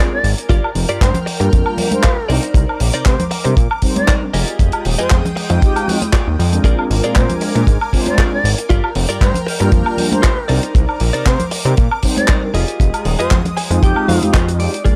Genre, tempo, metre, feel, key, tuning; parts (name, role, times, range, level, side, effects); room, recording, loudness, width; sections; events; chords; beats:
nu-disco, nu disco; 117 BPM; 4/4; swing 54% on 16ths; A4 = 439 Hz
mellow silver concert flute; melody; 0.0-14.3 s; G4 to D5; -26 LUFS; equal; analog delay
mellow synth brass; accompaniment; 0.0-14.7 s; G3 to G5; -24 LUFS; equal; chorus, cassette tape, sidechain pumping
lush unison pad; sustained chords; 0.1-14.8 s; Ab3 to F6; -31 LUFS; equal; chorus, phaser, sidechain pumping
direct-recorded clean electric guitar; riff; 0.0-15.0 s; Eb4 to Ab5; -25 LUFS; equal; analog chorus, low-pass filter
fat analog bass; bass; 0.2-15.0 s; Eb1 to C3; -19 LUFS; equal; sidechain pumping
damped 70s drum kit; drums; 0.2-15.0 s; handclaps, hi-hat, woodblock; -24 LUFS; equal; studio reverb
kick drum; drums; 0.5-15.0 s; -16 LUFS; equal; studio reverb
congas; percussion; 1.0-15.0 s; -26 LUFS; equal
small room ambience; dry, gritty hardware recording; -15 LUFS; mono
0.0-14.9 A section
drop 0.0-14.9; clean electric guitar fill 13.3-14.9
0.5 Gm7; 2.3 Cm9; 4.3 Fm9; 6.7 Bb7; 8.7 Gm7; 10.5 Cm9; 12.5 Fm9
| 0.50 1.01 1.52 2.04 | 2.55 3.06 3.57 4.09 | 4.60 5.11 5.62 6.14 | 6.65 7.16 7.68 8.19 | 8.70 9.21 9.73 10.24 | 10.75 11.27 11.78 12.29 | 12.80 13.32 13.83 14.34 | 14.86